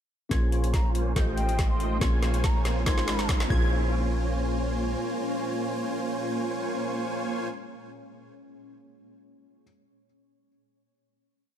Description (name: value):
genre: future bass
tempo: 141 BPM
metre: 4/4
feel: half-time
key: Bb dorian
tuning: A4 = 440 Hz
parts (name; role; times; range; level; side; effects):
- felt-muted upright piano; accompaniment; 0.3-9.6 s; Ab3 to C6; -36 LUFS; left 4 dB; sidechain pumping, digital delay
- shimmering ambient pad; sustained chords; 0.9-7.5 s; Bb2 to Db4; -37 LUFS; left 1 dB; chorus, built-in reverb, vintage 12-bit sampler grit, sidechain pumping
- wide unison pluck; arpeggios; 0.3-7.5 s; G6 to Ab6; -40 LUFS; right 1 dB; cassette tape, sidechain pumping
- dense compressed supersaw; riff; 0.3-7.5 s; Ab3 to Ab5; -31 LUFS; right 1 dB; sidechain pumping, low-pass filter, digital delay
- warm 808-style bass; bass; 0.3-5.0 s; Ab1 to Bb1; -27 LUFS; equal; sidechain pumping
- electronic kick drum; drums; 0.3-3.6 s; none; -27 LUFS; equal; studio reverb
- trap drum kit; drums; 0.3-3.5 s; hi-hat, snare drum; -34 LUFS; equal; high-pass filter on snare, studio reverb, high-pass filter on hats
- riser; sound effects; 1.8-3.7 s; none; -40 LUFS; right 1 dB; none
- bright baroque flute; melody; 0.7-3.3 s; G5 to C6; -37 LUFS; right 1 dB; sidechain pumping, dub echo
room: light reverb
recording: dark, warm production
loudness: -24 LUFS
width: side -10 dB against mid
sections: 0.3-3.7 build; 3.7-7.1 final hit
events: build-up 0.3-3.7; drum fill 0.3-3.7; filter sweep on supersaw synth 0.3-3.7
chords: 0.3 Bbm7; 1.2 F7/A; 2.0 Bbm7; 2.9 Ab6; 3.5 Bbm7